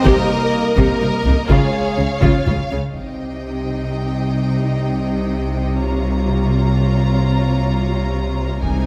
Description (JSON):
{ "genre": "cinematic, epic orchestral film score", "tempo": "84 BPM (dotted quarters)", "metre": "12/8", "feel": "straight", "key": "C phrygian", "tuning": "A4 = 440 Hz", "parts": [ { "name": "dark symphonic violin section", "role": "melody", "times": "0.0-8.9 s", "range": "Eb5 to Bb5", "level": "-32 LUFS", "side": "equal", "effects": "none" }, { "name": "warm symphonic violin section", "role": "second line", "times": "0.0-8.9 s", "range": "Ab4 to Eb5", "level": "-31 LUFS", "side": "equal", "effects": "none" }, { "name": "mellow French horn section", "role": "sustained chords", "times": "0.0-8.9 s", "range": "G3 to Db5", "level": "-29 LUFS", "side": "equal", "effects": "none" }, { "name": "warm symphonic viola section", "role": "accompaniment", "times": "0.1-8.9 s", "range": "Db4 to Db5", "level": "-27 LUFS", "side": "equal", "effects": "none" }, { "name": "dark chamber double bass section", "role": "bass", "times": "0.1-8.9 s", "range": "C2 to Db2", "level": "-23 LUFS", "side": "equal", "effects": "none" }, { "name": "rich symphonic cello section", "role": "bass", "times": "0.1-8.9 s", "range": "C3 to Db3", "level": "-23 LUFS", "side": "equal", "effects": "none" }, { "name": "taiko ensemble", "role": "drums", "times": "0.1-3.9, 8.6-8.9 s", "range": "none", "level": "-23 LUFS", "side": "equal", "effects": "none" }, { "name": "timpani", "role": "percussion", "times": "0.1-0.7 s", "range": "C3", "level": "-27 LUFS", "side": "equal", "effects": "none" } ], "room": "moderate scoring stage reverb, RT60 2.1 s", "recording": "none", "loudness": "-18 LUFS", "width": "mono", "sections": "0.0-3.0 A section; 3.0-8.9 B section", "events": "none", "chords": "0.1 Eb/C; 1.5 Db; 3.0 Cm; 5.8 Bbm/C", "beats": "| 0.05 0.77 1.50 2.22 | 2.95 3.67 4.38 5.08 | 5.79 6.50 7.21 7.92 | 8.63" }